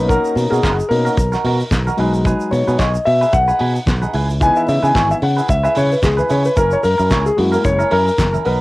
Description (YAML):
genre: disco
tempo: 111 BPM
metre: 4/4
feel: swing 56% on 16ths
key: unclear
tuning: A4 = 441 Hz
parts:
  - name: dark concert grand piano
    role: accompaniment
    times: 0.0-8.6 s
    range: E3 to G#5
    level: -16 LUFS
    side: left 1 dB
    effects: none
  - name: fingered electric bass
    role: bass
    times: 0.0-8.6 s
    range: F#1 to C#3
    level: -18 LUFS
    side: equal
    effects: tube saturation
  - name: clean electric guitar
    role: accompaniment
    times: 0.1-8.6 s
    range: B3 to C#5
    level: -23 LUFS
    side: right 4 dB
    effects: none
  - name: damped 70s drum kit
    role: drums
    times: 0.1-8.6 s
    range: handclaps, hi-hat, kick drum, snare drum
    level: -21 LUFS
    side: equal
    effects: cassette tape
  - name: congas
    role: percussion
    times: 0.1-8.5 s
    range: none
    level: -32 LUFS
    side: left 2 dB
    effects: none
  - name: tube shaker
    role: percussion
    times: 0.1-8.5 s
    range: none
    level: -39 LUFS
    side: right 3 dB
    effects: none
room: moderate booth ambience, RT60 0.2 s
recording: home recording on cassette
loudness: -13 LUFS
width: side -19 dB against mid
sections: 0.0-8.6 A section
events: grand piano solo 0.0-8.6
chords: 0.0 Bmaj7; 2.0 B69; 4.1 C#m7; 6.6 F#7